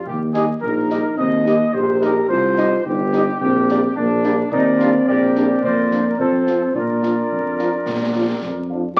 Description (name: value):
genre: military-style march for wind band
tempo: 108 BPM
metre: 2/4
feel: straight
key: Eb major, Bb major from 4.5 s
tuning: A4 = 440 Hz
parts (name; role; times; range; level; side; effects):
- mellow trumpet section; melody; 0.0-8.7 s; D4 to Eb5; -26 LUFS; equal; none
- dark euphonium; second line; 0.0-9.0 s; Bb3 to G4; -23 LUFS; equal; none
- mellow tuba; bass; 0.1-9.0 s; G1 to Bb2; -24 LUFS; equal; none
- concert bass drum, concert snare drum and clash cymbals; drums; 0.1-9.0 s; none; -36 LUFS; equal; none
- warm French horn section; accompaniment; 0.3-8.8 s; F3 to F4; -28 LUFS; equal; none
- mellow woodwind section; second line; 0.4-8.7 s; F4 to Eb5; -25 LUFS; equal; none
room: wet large studio reverb, RT60 0.8 s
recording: very old 78 rpm record, tube saturation, vinyl crackle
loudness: -18 LUFS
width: mono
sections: 0.0-9.0 A section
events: none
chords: 0.1 Eb; 2.3 Cm; 3.4 Gm/Bb; 4.5 Ebmaj7; 5.6 Bb/F; 6.2 F; 6.7 Bb